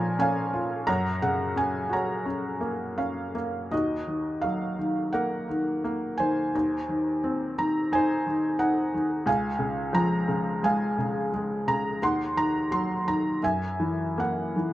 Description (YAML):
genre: classical, lyrical solo piano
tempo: 86 BPM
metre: 4/4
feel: uneven beats, rubato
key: Eb dorian from 3.7 s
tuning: A4 = 440 Hz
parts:
  - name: felt-muted upright piano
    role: solo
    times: 0.0-14.7 s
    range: Db2 to C6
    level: -24 LUFS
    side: equal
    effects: none
room: moderate studio reverb, RT60 0.5 s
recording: dark, warm production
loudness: -24 LUFS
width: side -15 dB against mid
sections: 0.0-3.7 A section; 3.7-14.7 B section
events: none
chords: 0.0 A#m7; 0.9 F#; 3.7 Ebm; 6.5 Ab/Eb; 9.3 Db; 12.0 Ebm; 13.4 Gb7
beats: 0.19 | 0.87 1.56 2.26 2.99 | 3.72 4.44 5.14 5.85 | 6.54 7.24 7.93 8.61 | 9.27 9.94 10.64 11.33 | 12.02 12.71 13.43 14.18